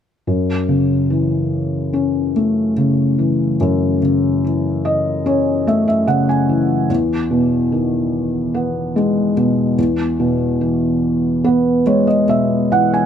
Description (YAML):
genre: pop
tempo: 72 BPM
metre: 4/4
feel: straight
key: unclear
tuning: A4 = 439 Hz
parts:
  - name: felt-muted upright piano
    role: accompaniment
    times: 0.3-13.1 s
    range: E2 to G#5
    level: -14 LUFS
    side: equal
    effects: none
room: light reverb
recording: none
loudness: -14 LUFS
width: side -8 dB against mid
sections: 0.3-13.1 A section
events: felt piano fill 4.4-6.9, 11.0-13.1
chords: 0.3 F#m7; 6.9 Emaj7; 9.8 Emaj13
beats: | 0.27 1.11 1.94 2.77 | 3.61 4.43 5.26 6.08 | 6.89 7.71 8.54 9.37 | 10.20 11.02 11.86 12.71